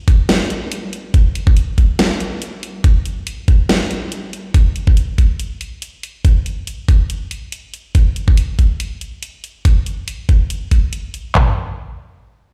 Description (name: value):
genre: dubstep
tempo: 141 BPM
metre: 4/4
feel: swing 55% on 16ths, half-time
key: none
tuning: none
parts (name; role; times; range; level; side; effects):
- dubstep drum kit; drums; 0.1-11.5 s; handclaps, kick drum, toms; -14 LUFS; equal; none
- dubstep drum kit; drums; 0.1-11.2 s; hi-hat, snare drum; -23 LUFS; equal; none
room: light reverb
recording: played on a big sound system in a bare room, stone room reverb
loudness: -16 LUFS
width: mono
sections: 0.0-11.4 A section; 11.4-12.5 B section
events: none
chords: none